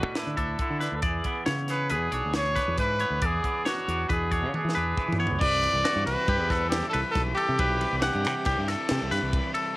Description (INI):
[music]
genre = math rock and midwest emo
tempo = 138 BPM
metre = 5/4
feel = straight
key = unclear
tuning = A4 = 444 Hz
[part]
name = clear trumpet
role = melody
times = 0.0-8.6 s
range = E4 to D5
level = -28 LUFS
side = equal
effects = none
[part]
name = twangy electric guitar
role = accompaniment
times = 0.0-5.4 s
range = A2 to G#4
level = -35 LUFS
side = right 5 dB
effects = cassette tape
[part]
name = twangy electric guitar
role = arpeggios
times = 0.0-9.8 s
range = F#4 to F#5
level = -30 LUFS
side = left 2 dB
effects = cassette tape, analog delay
[part]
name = fingered electric bass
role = bass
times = 0.0-9.4 s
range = B1 to E3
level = -30 LUFS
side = equal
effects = none
[part]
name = crisp fusion drum kit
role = drums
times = 0.2-9.6 s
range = crash cymbal, hi-hat, kick drum, ride cymbal, snare drum, toms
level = -31 LUFS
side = equal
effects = none
[part]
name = overdriven electric guitar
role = riff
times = 5.4-9.8 s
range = C3 to E4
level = -35 LUFS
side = right 2 dB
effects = cassette tape
[sound]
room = light reverb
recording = home recording on cassette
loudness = -24 LUFS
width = side -20 dB against mid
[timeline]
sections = 0.0-5.4 A section; 5.4-9.8 B section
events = drum fill 4.5-5.4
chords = 0.0 Dadd9; 1.0 E7; 5.4 Cmaj7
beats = 0.16 0.60 | 1.04 1.47 1.91 2.35 2.79 | 3.22 3.66 4.10 4.54 4.97 | 5.41 5.84 6.28 6.71 7.15 | 7.58 8.02 8.45 8.89 9.32 | 9.76